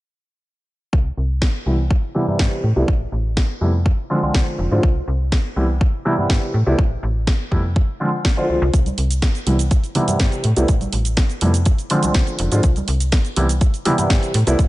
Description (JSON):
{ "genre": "filtered disco house", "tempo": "123 BPM", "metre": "4/4", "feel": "straight", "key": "C major", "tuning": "A4 = 441 Hz", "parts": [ { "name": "slap-like FM bass", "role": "bass", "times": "0.9-14.7 s", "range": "F1 to A2", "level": "-20 LUFS", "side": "equal", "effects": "sidechain pumping, low-pass filter" }, { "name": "electronic kick drum", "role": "drums", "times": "0.9-14.7 s", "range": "none", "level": "-17 LUFS", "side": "equal", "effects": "none" }, { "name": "house drum kit", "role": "drums", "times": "1.4-14.7 s", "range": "hi-hat, shaker, snare drum", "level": "-26 LUFS", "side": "right 1 dB", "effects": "sidechain pumping on hats, sidechain pumping on perc" }, { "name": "dark grand piano", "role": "accompaniment", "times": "1.7-14.5 s", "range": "C3 to F4", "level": "-21 LUFS", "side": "equal", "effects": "phaser, vintage 12-bit sampler grit, sidechain pumping, low-pass filter" }, { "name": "maracas and congas", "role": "percussion", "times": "8.7-14.7 s", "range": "none", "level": "-27 LUFS", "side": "right 3 dB", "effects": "sidechain pumping on perc, low-pass filter on perc" } ], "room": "little or no reverb", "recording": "nothing above 10.5 kHz", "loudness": "-16 LUFS", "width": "side -18 dB against mid", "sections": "0.9-8.7 A section; 8.7-14.7 B section", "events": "filter sweep 0.9-8.7, 8.7-14.7", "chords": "0.9 Cmaj7; 2.6 Am7; 3.9 Fm6; 4.8 Cmaj7; 6.5 Am7; 7.8 Fm6; 8.7 Cmaj7; 10.4 Am7; 11.7 Fm6; 12.6 Cmaj7" }